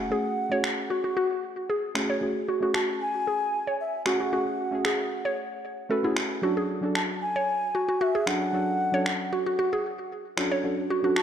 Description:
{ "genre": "organic downtempo", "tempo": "114 BPM", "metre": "4/4", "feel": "straight", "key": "F# minor", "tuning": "A4 = 440 Hz", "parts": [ { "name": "bansuri", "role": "melody", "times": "0.0-11.2 s", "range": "E5 to A5", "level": "-31 LUFS", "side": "left 1 dB", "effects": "digital delay" }, { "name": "deep mellow chord stab", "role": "accompaniment", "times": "0.0-11.2 s", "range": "F#3 to B4", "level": "-30 LUFS", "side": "equal", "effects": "chorus, vintage 12-bit sampler grit, digital delay" }, { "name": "mallet-like synth pluck", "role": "arpeggios", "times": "0.0-11.2 s", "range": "E4 to C#5", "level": "-28 LUFS", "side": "right 1 dB", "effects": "chorus, digital delay" }, { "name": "electronic finger snaps", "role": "drums", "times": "0.6-11.2 s", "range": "none", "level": "-30 LUFS", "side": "equal", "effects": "none" } ], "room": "moderate echo chamber reverb, RT60 1.9 s", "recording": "dark, warm production", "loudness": "-24 LUFS", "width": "side -9 dB against mid", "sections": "0.0-11.2 A section", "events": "none", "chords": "0.0 F#madd9; 6.4 Dmaj7/F#" }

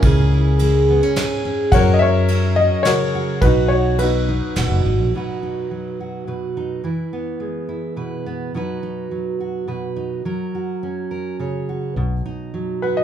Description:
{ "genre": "acoustic folk-pop ballad", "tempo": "106 BPM", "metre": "3/4", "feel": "straight", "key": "B major", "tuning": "A4 = 439 Hz", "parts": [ { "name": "clear concert grand piano", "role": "melody", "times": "0.0-4.8, 12.8-13.0 s", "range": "C#4 to F#5", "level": "-20 LUFS", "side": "left 3 dB", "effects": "none" }, { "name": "fingerpicked steel-string acoustic guitar", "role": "accompaniment", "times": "0.0-13.0 s", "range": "G#2 to C#5", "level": "-22 LUFS", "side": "right 2 dB", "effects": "none" }, { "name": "fingered electric bass", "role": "bass", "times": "0.0-5.1, 12.0-12.2 s", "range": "D#1 to F#2", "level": "-18 LUFS", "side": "equal", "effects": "none" }, { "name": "soft brush drum kit", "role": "drums", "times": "0.0-4.7 s", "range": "kick drum, ride cymbal, snare drum", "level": "-22 LUFS", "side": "right 1 dB", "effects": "none" } ], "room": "light reverb", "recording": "band playing live in one room", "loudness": "-17 LUFS", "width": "side -10 dB against mid", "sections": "0.0-5.1 A section; 5.1-12.0 B section; 12.0-13.0 C section", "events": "none", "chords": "0.0 C#m; 1.7 F#; 3.4 B; 6.8 E; 8.5 B; 10.2 F#; 12.0 B" }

